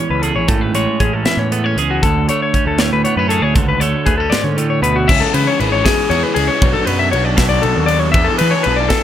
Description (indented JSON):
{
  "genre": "math rock and midwest emo",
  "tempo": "78 BPM (dotted quarters)",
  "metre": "6/8",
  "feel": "straight",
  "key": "D lydian",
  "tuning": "A4 = 443 Hz",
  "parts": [
    { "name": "twelve-string electric guitar", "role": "accompaniment", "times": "0.0-5.1 s", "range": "D2 to G#4", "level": "-19 LUFS", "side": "right 7 dB", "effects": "spring reverb" },
    { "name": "clean electric guitar", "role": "arpeggios", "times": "0.0-9.0 s", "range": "F#4 to E5", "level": "-17 LUFS", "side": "left 6 dB", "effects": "analog delay" },
    { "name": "fuzz picked electric bass", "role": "bass", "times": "0.1-8.9 s", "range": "G#1 to E3", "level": "-19 LUFS", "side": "equal", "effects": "overdrive" },
    { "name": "modern studio drum kit", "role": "drums", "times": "0.2-9.0 s", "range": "crash cymbal, hi-hat, kick drum, ride cymbal, snare drum", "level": "-18 LUFS", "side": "equal", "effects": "none" },
    { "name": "crunchy overdriven guitar", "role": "riff", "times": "5.1-9.0 s", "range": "B2 to G#4", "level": "-19 LUFS", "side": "equal", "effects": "phaser" }
  ],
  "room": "light reverb",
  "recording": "none",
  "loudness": "-12 LUFS",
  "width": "side -10 dB against mid",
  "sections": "0.0-5.1 A section; 5.1-9.0 B section",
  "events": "none",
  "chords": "0.0 Amaj7; 2.0 Dmaj7; 5.1 C#m7; 6.6 Bm11; 8.1 E7sus4",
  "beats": "| 0.48 1.25 | 2.02 2.79 | 3.56 4.33 | 5.09 5.86 | 6.62 7.38 | 8.14 8.90"
}